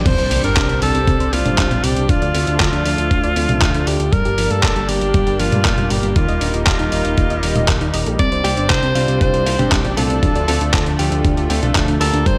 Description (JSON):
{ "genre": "italo disco", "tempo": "118 BPM", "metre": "4/4", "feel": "straight", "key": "C dorian", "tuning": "A4 = 440 Hz", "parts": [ { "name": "bright alto saxophone", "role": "melody", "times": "0.0-12.4 s", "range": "F4 to D5", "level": "-24 LUFS", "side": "equal", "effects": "delay" }, { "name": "lush unison pad", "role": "sustained chords", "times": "0.0-12.4 s", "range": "F3 to Eb4", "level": "-26 LUFS", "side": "equal", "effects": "chorus" }, { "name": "soft round pluck", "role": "arpeggios", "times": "0.0-12.4 s", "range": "F3 to Eb5", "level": "-28 LUFS", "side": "equal", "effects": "chorus, tape echo" }, { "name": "fat analog bass", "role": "bass", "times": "0.0-12.4 s", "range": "D1 to G2", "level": "-23 LUFS", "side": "equal", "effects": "tube saturation" }, { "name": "dusty soul sampler-style drum kit", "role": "drums", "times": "0.1-12.4 s", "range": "crash cymbal, handclaps, hi-hat, toms", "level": "-24 LUFS", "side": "equal", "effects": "overdrive, gated reverb" }, { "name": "electronic kick drum", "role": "drums", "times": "0.1-12.4 s", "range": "none", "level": "-21 LUFS", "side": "equal", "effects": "overdrive" }, { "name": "impact", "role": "sound effects", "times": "0.1-2.1 s", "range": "none", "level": "-30 LUFS", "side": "equal", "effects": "none" }, { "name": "direct-recorded clean electric guitar", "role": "stabs", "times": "8.4-12.4 s", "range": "G3 to Bb4", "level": "-26 LUFS", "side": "equal", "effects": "vintage 12-bit sampler grit" } ], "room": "light reverb, digital ambience", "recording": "none", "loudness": "-17 LUFS", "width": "mono", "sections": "0.1-12.4 A section", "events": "impact 0.1-2.1", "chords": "0.1 Csus2; 2.1 Dm; 4.1 Gm; 6.2 Eb; 8.2 Csus2; 10.2 Dm" }